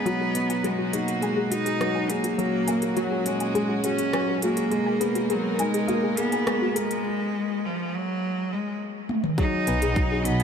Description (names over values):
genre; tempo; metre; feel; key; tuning
piano and strings electronica; 103 BPM; 4/4; straight; unclear; A4 = 439 Hz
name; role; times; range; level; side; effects
bright cello; melody; 0.0-10.4 s; E#3 to D#4; -27 LUFS; right 1 dB; none
warm studio string section; sustained chords; 0.0-10.4 s; A#2 to D#5; -33 LUFS; right 1 dB; sidechain pumping
dark concert grand piano; riff; 0.0-10.4 s; F#3 to A#4; -28 LUFS; left 2 dB; ping-pong delay
soft round pluck; arpeggios; 0.1-10.4 s; F#4 to G#5; -32 LUFS; left 3 dB; wide subtle chorus, sidechain pumping, ping-pong delay
organic electronic drum kit; drums; 0.1-10.4 s; hi-hat, rim click, toms; -32 LUFS; equal; overdrive
electronic kick drum; drums; 9.4-10.1 s; none; -26 LUFS; right 1 dB; overdrive
warm chamber double bass section; bass; 9.7-10.4 s; B1; -26 LUFS; right 1 dB; sidechain pumping
room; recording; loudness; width
moderate huge ambient reverb, RT60 7.4 s; none; -23 LUFS; side -7 dB against mid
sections
0.0-9.4 A section; 9.4-10.4 B section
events
build-up 0.0-9.4; filter sweep on synth arpeggio sound 0.0-9.4; break 7.0-9.4; drum fill 9.1; drop 9.4-10.4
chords
0.1 B6; 2.4 F#add9; 4.7 G#madd9; 7.0 N.C.; 9.4 B6